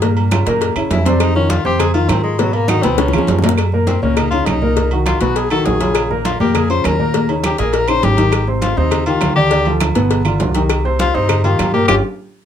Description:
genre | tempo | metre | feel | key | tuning
Afro-Cuban jazz | 202 BPM | 4/4 | straight | unclear | A4 = 440 Hz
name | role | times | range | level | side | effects
dark baby grand piano | accompaniment | 0.0-12.0 s | Bb2 to D5 | -17 LUFS | equal | none
upright bass | bass | 0.0-12.0 s | G1 to Ab2 | -18 LUFS | right 1 dB | none
agogo bells and timbales | percussion | 0.0-12.0 s | none | -24 LUFS | right 6 dB | none
congas | percussion | 0.0-12.0 s | none | -24 LUFS | right 2 dB | none
cowbell and bongos | percussion | 0.0-12.0 s | none | -23 LUFS | left 7 dB | none
claves | percussion | 0.3-12.0 s | none | -26 LUFS | right 7 dB | none
breathy tenor saxophone | second line | 0.9-12.0 s | Gb3 to C5 | -19 LUFS | left 5 dB | none
room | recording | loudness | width
moderate small room reverb, RT60 0.5 s | none | -13 LUFS | side -9 dB against mid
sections
0.0-3.6 A section; 3.6-12.4 A section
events
tenor saxophone solo 0.0-12.4; drum fill 3.0-3.6; band accent 11.9-12.4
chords
0.0 Gm7b5; 0.6 Gb7#11; 1.2 Fm7; 2.4 Abm7; 3.0 Db13; 3.6 Gb6; 4.8 Cm7b5; 5.4 Badd9; 6.0 Bbm; 7.1 Eb7; 8.3 Abmaj7; 9.5 Dm; 10.1 G7; 10.7 Cm7; 11.9 Fsus2/G

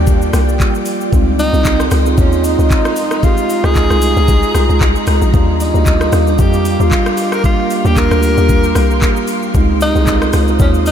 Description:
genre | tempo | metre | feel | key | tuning
amapiano | 114 BPM | 4/4 | swing 55% on 16ths | Eb major | A4 = 440 Hz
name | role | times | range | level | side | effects
mellow tine electric piano | accompaniment | 0.0-10.9 s | G3 to D5 | -17 LUFS | right 4 dB | lush chorus
ethereal airy pad | sustained chords | 0.0-10.9 s | F4 to Eb6 | -22 LUFS | equal | ensemble chorus, built-in reverb
hollow log drum bass | bass | 0.0-10.9 s | Bb1 to F2 | -14 LUFS | left 1 dB | none
afro-pop drum kit | drums | 0.1-10.9 s | handclaps, hi-hat, kick drum, rim click, shaker | -16 LUFS | left 1 dB | none
breathy tenor saxophone | melody | 1.4-10.9 s | Db4 to Bb4 | -18 LUFS | left 1 dB | diffuse ambient delay
room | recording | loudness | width
moderate huge ambient reverb, RT60 8.0 s | dreamy mix soaked in reverb | -10 LUFS | side -9 dB against mid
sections
0.0-10.9 A section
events
none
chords
0.0 Ebmaj9; 1.1 Dbmaj9; 5.3 Ebmaj9; 9.5 Dbmaj9

